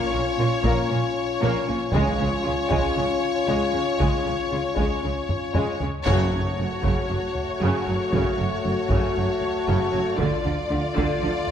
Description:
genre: cinematic, epic orchestral film score.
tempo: 116 BPM.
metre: 4/4.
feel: straight.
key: F# harmonic minor.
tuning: A4 = 442 Hz.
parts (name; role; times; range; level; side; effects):
warm symphonic violin section; melody; 0.0-11.5 s; C#5 to D5; -29 LUFS; left 2 dB; none.
dark symphonic violin section; second line; 0.0-11.5 s; G#3 to F#4; -32 LUFS; left 2 dB; none.
rich studio viola section; accompaniment; 0.0-11.3 s; C#3 to A#3; -32 LUFS; right 2 dB; none.
warm French horn section; sustained chords; 0.0-11.5 s; A3 to F#4; -27 LUFS; left 4 dB; none.
warm symphonic cello section; bass; 0.1-11.3 s; F#2 to D3; -29 LUFS; right 2 dB; none.
warm symphonic double bass section; bass; 0.1-11.3 s; F#1 to D2; -29 LUFS; right 3 dB; none.
taiko ensemble; drums; 0.6-11.5 s; none; -29 LUFS; equal; none.
timpani; percussion; 1.9-2.7, 6.1-6.8 s; F#2 to C#3; -30 LUFS; equal; none.
room: moderate scoring stage reverb, RT60 1.6 s.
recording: none.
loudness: -21 LUFS.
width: side -9 dB against mid.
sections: 0.0-6.1 A section; 6.1-11.5 A section.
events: drum fill 5.3-6.1; band accent 6.1-6.6.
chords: 0.0 A#m; 1.9 C#; 6.1 F#m; 10.2 Dm.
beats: 0.39 0.90 1.42 | 1.94 2.45 2.97 3.48 | 4.00 4.51 5.03 5.55 | 6.06 6.58 7.10 7.61 | 8.13 8.64 9.16 9.68 | 10.20 10.71 11.23.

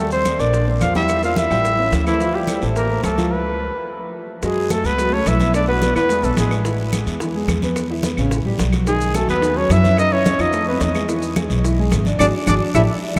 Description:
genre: Afro-Cuban jazz.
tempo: 216 BPM.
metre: 4/4.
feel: straight.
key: D minor, F# minor from 4.4 s.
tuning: A4 = 440 Hz.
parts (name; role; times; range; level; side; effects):
breathy trumpet; melody; 0.0-6.6, 8.9-13.2 s; E4 to F5; -24 LUFS; equal; none.
growling tenor saxophone; second line; 0.0-6.6, 8.9-12.8 s; E3 to F4; -28 LUFS; equal; none.
warm concert grand piano; accompaniment; 0.0-12.8 s; C#3 to G5; -26 LUFS; equal; none.
upright bass; bass; 0.0-13.2 s; G#1 to F#2; -23 LUFS; equal; none.
congas; percussion; 0.1-13.2 s; none; -28 LUFS; equal; none.
maracas; percussion; 0.1-13.2 s; none; -38 LUFS; equal; none.
claves; percussion; 0.2-13.2 s; none; -38 LUFS; equal; none.
bongos; percussion; 0.3-13.2 s; none; -35 LUFS; equal; none.
guiro; percussion; 0.3-13.2 s; none; -38 LUFS; equal; none.
room: wet cathedral reverb, RT60 6.0 s.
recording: in a vast, echoing space.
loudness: -18 LUFS.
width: mono.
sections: 0.0-4.4 A section; 4.4-13.2 B section.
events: stop 3.3-4.4; band accent 12.2-13.2.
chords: 0.0 Ebmaj7; 1.1 Em7b5; 1.6 A7; 2.2 Dm7; 3.3 N.C.; 4.4 F#m9; 5.5 Bsus4; 6.1 Asus2; 7.8 E5; 8.3 Asus2; 8.9 B69; 10.0 F#5; 10.5 F; 11.1 E; 12.2 D.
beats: 0.25 0.53 0.81 | 1.09 1.37 1.65 1.92 | 2.20 2.48 2.76 3.04 | 3.32 3.59 3.87 4.15 | 4.43 4.71 4.98 5.26 | 5.54 5.82 6.09 6.37 | 6.65 6.93 7.21 7.48 | 7.76 8.04 8.31 8.59 | 8.87 9.15 9.43 9.70 | 9.98 10.26 10.54 10.81 | 11.09 11.37 11.64 11.92 | 12.20 12.48 12.75 13.03.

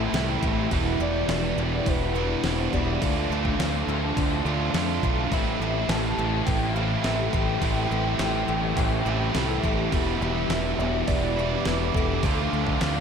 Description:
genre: rock, shoegaze and dream pop.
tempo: 104 BPM.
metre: 4/4.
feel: straight.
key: A minor.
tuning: A4 = 437 Hz.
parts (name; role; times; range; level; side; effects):
phased analog pad; sustained chords; 0.0-13.0 s; E4 to D6; -35 LUFS; equal; phaser, chorus.
picked twelve-string acoustic guitar; arpeggios; 0.0-13.0 s; E3 to G4; -37 LUFS; left 12 dB; ensemble chorus, slapback echo.
biting overdriven guitar; riff; 0.0-13.0 s; E2 to F4; -28 LUFS; right 10 dB; reverse reverb.
thick fuzz guitar; riff; 0.0-13.0 s; E2 to D4; -30 LUFS; left 12 dB; distortion, ensemble chorus.
growling fingered electric bass; bass; 0.0-13.0 s; E1 to F2; -29 LUFS; equal; overdrive.
clean 12-bit digital drum machine; drums; 0.1-12.9 s; hi-hat, kick drum, snare drum; -28 LUFS; equal; none.
pure sine lead; melody; 1.0-12.5 s; A4 to A5; -33 LUFS; left 2 dB; chorus, slapback echo.
room: light reverb.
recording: none.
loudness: -22 LUFS.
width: side -7 dB against mid.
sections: 0.0-13.0 A section.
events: none.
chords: 0.0 Am7; 0.7 Em7; 3.0 Dm7; 5.3 Am7; 9.9 Em7; 12.2 Dm7.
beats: 0.14 | 0.71 1.29 1.86 2.44 | 3.01 3.59 4.17 4.74 | 5.32 5.89 6.47 7.04 | 7.62 8.20 8.78 9.35 | 9.93 10.51 11.08 11.66 | 12.24 12.81.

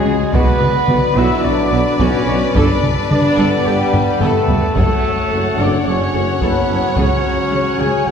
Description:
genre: cinematic, epic orchestral film score.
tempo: 109 BPM.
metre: 4/4.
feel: straight.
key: F# minor.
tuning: A4 = 439 Hz.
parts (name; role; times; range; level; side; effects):
warm chamber violin section; melody; 0.0-8.1 s; C#5 to F#5; -27 LUFS; left 5 dB; none.
warm symphonic violin section; second line; 0.0-8.1 s; G#4 to C#5; -25 LUFS; left 4 dB; none.
warm symphonic viola section; accompaniment; 0.0-8.1 s; F#4 to A4; -26 LUFS; equal; none.
warm French horn section; sustained chords; 0.0-8.1 s; G3 to G#4; -19 LUFS; left 2 dB; none.
warm trombone section; sustained chords; 0.0-8.1 s; D3 to C#4; -25 LUFS; right 2 dB; none.
warm trumpet section; stabs; 0.0-8.1 s; G4 to G#5; -22 LUFS; right 1 dB; none.
mellow tuba; bass; 0.1-8.1 s; F#1 to C#2; -23 LUFS; right 2 dB; none.
rich symphonic double bass section; bass; 0.1-8.1 s; F#1 to C#2; -24 LUFS; right 2 dB; none.
warm symphonic cello section; bass; 0.1-8.1 s; F#2 to C#3; -23 LUFS; right 2 dB; none.
taiko ensemble; drums; 0.3-7.5 s; none; -20 LUFS; equal; none.
room: wet concert hall reverb, RT60 2.0 s.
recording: heard from further back in the room.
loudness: -13 LUFS.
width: side -7 dB against mid.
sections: 0.0-8.1 A section.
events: drum fill 3.9-4.8.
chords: 0.3 Bm; 2.5 Gadd9; 4.8 F#m; 7.0 C#sus4.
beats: | 0.33 0.88 1.44 1.99 | 2.54 3.09 3.65 4.20 | 4.75 5.30 5.86 6.41 | 6.96 7.51 8.06.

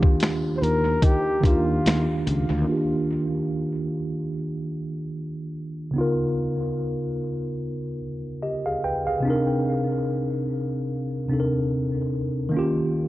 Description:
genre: lo-fi hip hop.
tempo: 73 BPM.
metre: 4/4.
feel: swing 56% on 16ths.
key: Eb major.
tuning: A4 = 441 Hz.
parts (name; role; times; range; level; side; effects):
mellow tine electric piano; accompaniment; 0.0-13.1 s; C3 to G5; -24 LUFS; equal; medium stereo tremolo, low-pass filter, analog delay.
boom bap sampler-style drum kit; drums; 0.0-2.5 s; finger snaps, hi-hat, kick drum, snare drum; -22 LUFS; equal; vintage 12-bit sampler grit.
breathy flugelhorn; melody; 0.6-2.2 s; F4 to C5; -26 LUFS; left 1 dB; analog delay.
sustaining fretless electric bass; bass; 0.6-2.6 s; Db2 to Eb3; -25 LUFS; equal; analog chorus.
room: light reverb.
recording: echo-heavy mix, cassette tape.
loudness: -22 LUFS.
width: side -16 dB against mid.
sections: 0.0-2.7 A section; 2.7-13.1 B section.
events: filter sweep on tine electric piano 2.7-13.1.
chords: 0.0 Ebmaj9; 6.0 Db13; 9.2 Cm9; 12.5 Eb9.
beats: 0.20 1.02 1.85 | 2.67 3.49 4.31 5.13 | 5.96 6.78 7.60 8.42 | 9.24 10.07 10.89 11.71 | 12.53.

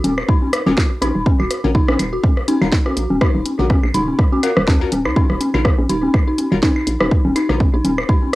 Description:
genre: minimal techno.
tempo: 123 BPM.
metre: 4/4.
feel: swing 56% on 16ths.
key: Eb minor.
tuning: A4 = 440 Hz.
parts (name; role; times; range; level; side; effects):
hollow knocking FM bass; bass; 0.0-8.0 s; Eb1 to Eb2; -20 LUFS; equal; sidechain pumping.
house drum kit; drums; 0.0-8.0 s; hi-hat, snare drum; -24 LUFS; equal; overdrive, studio ambience, cassette tape.
booming analog drum machine; percussion; 0.0-8.3 s; congas, rim click, toms, woodblock; -20 LUFS; left 1 dB; studio ambience, cassette tape.
dark detuned synth bell; riff; 0.3-8.1 s; Db4 to Bb4; -22 LUFS; equal; chorus, phaser, sidechain pumping, analog delay.
electronic kick drum; drums; 0.3-8.2 s; none; -15 LUFS; equal; overdrive, studio ambience, cassette tape.
wavetable chord stab; stabs; 0.7-7.6 s; Db4 to Bb4; -27 LUFS; left 5 dB; analog delay.
room: light reverb.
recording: home recording on cassette.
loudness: -14 LUFS.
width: side -18 dB against mid.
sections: 0.0-8.4 A section.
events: none.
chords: 0.0 Ebm7.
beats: 0.29 0.77 | 1.26 1.75 2.24 2.73 | 3.21 3.70 4.19 4.68 | 5.16 5.65 6.14 6.63 | 7.12 7.60 8.09.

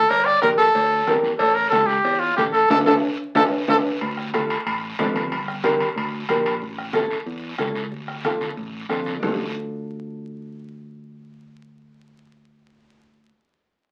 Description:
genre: latin, cumbia.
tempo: 184 BPM.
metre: 4/4.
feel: straight.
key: D harmonic minor.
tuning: A4 = 440 Hz.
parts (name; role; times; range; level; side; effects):
bright trumpet; melody; 0.0-3.8 s; F4 to D5; -20 LUFS; equal; none.
picked electric bass; bass; 0.0-13.3 s; G1 to F2; -35 LUFS; equal; none.
bombo; percussion; 0.1-9.3 s; none; -36 LUFS; equal; none.
cowbell and timbales; percussion; 0.1-6.6 s; none; -27 LUFS; equal; none.
guiro; percussion; 0.1-9.3 s; none; -37 LUFS; equal; none.
congas; percussion; 0.3-9.3 s; none; -36 LUFS; equal; none.
nylon-string guitar; accompaniment; 0.4-13.3 s; C#4 to Bb4; -27 LUFS; equal; none.
room: wet club ambience, RT60 0.5 s.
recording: very old 78 rpm record, vinyl crackle.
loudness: -21 LUFS.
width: mono.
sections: 0.0-4.0 A section; 4.0-9.2 B section; 9.2-11.8 C section.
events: band accent 2.7-4.0; drum fill 3.5-4.0.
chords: 0.1 Gm; 1.4 A7; 2.7 Dm; 5.3 Gm; 6.6 A; 7.9 Dm.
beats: | 0.10 0.43 0.75 1.08 | 1.40 1.73 2.05 2.38 | 2.71 3.03 3.36 3.68 | 4.01 4.33 4.66 4.99 | 5.31 5.64 5.96 6.29 | 6.62 6.94 7.27 7.60 | 7.92 8.25 8.57 8.90 | 9.23 9.55 9.88 10.21 | 10.54 10.86 11.19 11.52.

